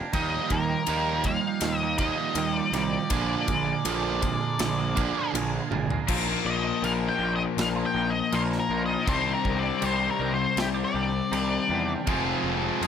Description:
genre	quiet-loud alternative rock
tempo	80 BPM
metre	4/4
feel	straight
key	unclear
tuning	A4 = 443 Hz
part	twelve-string electric guitar	arpeggios	0.0-12.9 s	F2 to Ab4	-32 LUFS	right 5 dB	phaser, digital delay
part	octave-fuzz lead guitar	melody	0.1-11.9 s	G4 to G5	-29 LUFS	left 2 dB	distortion
part	distorted electric guitar	riff	0.1-6.1, 12.1-12.9 s	Bb2 to Ab4	-29 LUFS	right 12 dB	overdrive
part	fuzz picked electric bass	bass	0.1-12.9 s	F1 to E2	-31 LUFS	equal	overdrive
part	big rock drum kit	drums	0.1-12.9 s	crash cymbal, kick drum, ride cymbal, snare drum, toms	-33 LUFS	equal	none
part	biting overdriven guitar	riff	6.1-12.9 s	F2 to C4	-28 LUFS	left 12 dB	spring reverb
room	light reverb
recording	none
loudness	-24 LUFS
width	side -8 dB against mid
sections	0.0-6.1 A section; 6.1-12.9 B section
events	drum fill 5.7-6.1; lead electric guitar solo 6.1-12.9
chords	0.1 Ebadd9; 3.1 Bb7; 6.1 Bbsus4; 9.1 Cmadd9; 12.1 Fm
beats	| 0.13 0.88 1.62 2.37 | 3.11 3.86 4.60 5.35 | 6.09 6.84 7.58 8.33 | 9.08 9.83 10.57 11.32 | 12.07 12.82

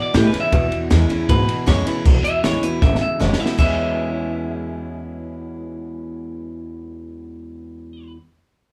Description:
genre	rockabilly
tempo	157 BPM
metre	4/4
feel	straight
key	E major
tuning	A4 = 440 Hz
part	clean electric guitar	melody	0.0-8.1 s	G4 to E5	-26 LUFS	equal	none
part	picked steel-string acoustic guitar	accompaniment	0.0-8.2 s	E2 to E4	-29 LUFS	equal	none
part	electric guitar through a small old amp	riff	0.0-8.2 s	E2 to B4	-31 LUFS	equal	vibrato effect
part	upright bass	bass	0.1-8.1 s	F#1 to B2	-23 LUFS	equal	none
part	compact cocktail drum kit	drums	0.1-3.7 s	crash cymbal, hi-hat, kick drum, ride cymbal, snare drum	-22 LUFS	equal	none
room	moderate studio reverb, RT60 0.5 s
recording	band playing live in one room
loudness	-18 LUFS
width	mono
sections	0.0-2.1 A section; 2.1-3.6 B section; 3.6-6.7 C section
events	drum fill 2.8-3.6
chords	0.0 E6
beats	0.15 | 0.53 0.91 1.29 1.68 | 2.06 2.44 2.83 3.21 | 3.59 3.97 4.36 4.74 | 5.12 5.51 5.89 6.28

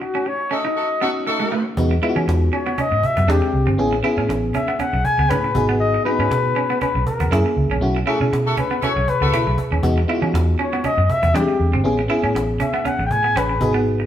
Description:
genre	polished 1980s jazz-funk pop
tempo	119 BPM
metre	4/4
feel	swing 54% on 16ths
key	E major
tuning	A4 = 444 Hz
part	breathy flugelhorn	melody	0.0-13.8 s	F#4 to G#5	-21 LUFS	left 3 dB	none
part	FM electric piano	accompaniment	0.0-14.1 s	G3 to G#4	-23 LUFS	left 1 dB	chorus, tremolo
part	semi-hollow electric guitar	riff	0.0-14.0 s	G#3 to E4	-25 LUFS	right 3 dB	none
part	warm horn section	second line	0.5-1.6, 8.1-9.6 s	A3 to A4	-25 LUFS	equal	none
part	vintage muted fingered electric bass	bass	1.8-14.0 s	G1 to E3	-21 LUFS	equal	none
part	cajon	drums	1.8-14.1 s	none	-28 LUFS	right 1 dB	none
room	wet stone room reverb, RT60 1.1 s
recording	band playing live in one room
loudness	-17 LUFS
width	side -10 dB against mid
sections	0.0-1.8 A section; 1.8-14.1 B section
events	break 0.0-1.8; band accent 0.0-1.8, 7.8-9.8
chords	0.0 B9 (rootless); 1.8 Emaj9; 3.3 E7alt; 3.8 Amaj9; 5.6 G#m7; 7.3 F#9; 7.8 B7sus4; 9.8 Emaj9; 11.3 E7alt; 11.8 Amaj9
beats	0.26 0.77 1.27 | 1.77 2.28 2.78 3.28 | 3.79 4.29 4.79 5.30 | 5.80 6.31 6.81 7.31 | 7.82 8.32 8.82 9.33 | 9.83 10.34 10.84 11.34 | 11.85 12.35 12.85 13.36 | 13.86

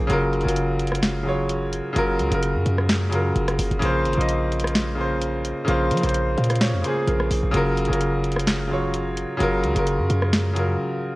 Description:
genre	hip hop, trap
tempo	129 BPM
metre	4/4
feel	half-time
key	unclear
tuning	A4 = 440 Hz
part	clear concert grand piano	accompaniment	0.0-11.2 s	Db3 to F5	-22 LUFS	equal	none
part	hard-hitting 808-style bass	bass	0.0-10.8 s	Gb1 to F3	-24 LUFS	equal	none
part	trap drum kit	drums	0.1-10.7 s	hi-hat, rim click, snare drum	-26 LUFS	equal	none
room	light reverb, digital ambience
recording	worn, warbling old tape, cassette tape, warbly pitch drift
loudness	-20 LUFS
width	side -20 dB against mid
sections	0.0-11.2 A section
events	break 10.8-11.2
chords	0.1 Gbmaj7; 3.8 Bbmadd9; 7.5 Gbmaj7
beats	| 0.10 0.56 1.03 1.50 | 1.96 2.42 2.89 3.35 | 3.82 4.29 4.75 5.22 | 5.68 6.15 6.61 7.08 | 7.54 8.01 8.47 8.94 | 9.40 9.87 10.33 10.80

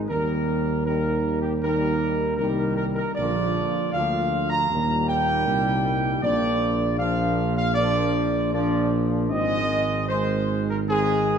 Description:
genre	classical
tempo	78 BPM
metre	4/4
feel	straight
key	Bb major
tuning	A4 = 439 Hz
part	clear trombone section	sustained chords	0.0-11.4 s	Bb2 to Ab3	-30 LUFS	right 2 dB	none
part	mellow French horn section	sustained chords	0.0-11.4 s	Bb3 to F4	-29 LUFS	left 5 dB	none
part	mellow tuba	bass	0.0-11.4 s	Ab1 to Eb2	-26 LUFS	right 3 dB	none
part	dark trumpet section	melody	0.1-11.4 s	G4 to Bb5	-25 LUFS	right 1 dB	none
room	wet concert hall reverb, RT60 2.1 s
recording	dark, warm production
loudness	-21 LUFS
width	side -7 dB against mid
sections	0.0-11.4 A section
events	none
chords	0.1 Eb; 3.2 Bb; 4.7 Eb; 6.2 Bb; 9.3 Ab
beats	| 0.10 0.87 1.63 2.40 | 3.17 3.94 4.70 5.46 | 6.23 6.99 7.76 8.53 | 9.31 10.10 10.88

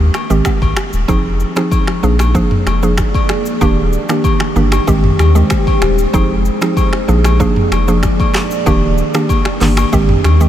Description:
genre	afrobeats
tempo	95 BPM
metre	4/4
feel	straight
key	F dorian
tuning	A4 = 442 Hz
part	warm sub bass	bass	0.0-10.5 s	Eb1 to Eb2	-13 LUFS	equal	none
part	afro-pop drum kit	drums	0.1-10.5 s	finger snaps, handclaps, hi-hat, kick drum, rim click, shaker, toms	-16 LUFS	equal	none
part	agogo bells and woodblock	percussion	0.1-10.4 s	none	-25 LUFS	left 8 dB	none
part	mallet-like synth pluck	accompaniment	0.3-10.5 s	Eb3 to Ab4	-16 LUFS	right 2 dB	chorus
part	deep dark ambient pad	sustained chords	2.0-10.5 s	Bb3 to D5	-20 LUFS	right 1 dB	chorus, built-in reverb
room	moderate huge ambient reverb, RT60 8.0 s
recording	dreamy mix soaked in reverb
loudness	-11 LUFS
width	side -11 dB against mid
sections	0.0-1.1 A section; 1.1-10.5 B section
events	none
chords	0.0 Abmaj7; 1.1 Fm7; 2.0 Bb7; 3.6 Ebmaj7; 4.9 Abmaj7; 6.1 Fm7; 7.1 Bb7; 8.7 Ebmaj7; 9.9 Abmaj7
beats	0.45 | 1.08 1.72 2.35 2.98 | 3.61 4.24 4.88 5.51 | 6.14 6.77 7.40 8.03 | 8.66 9.30 9.93

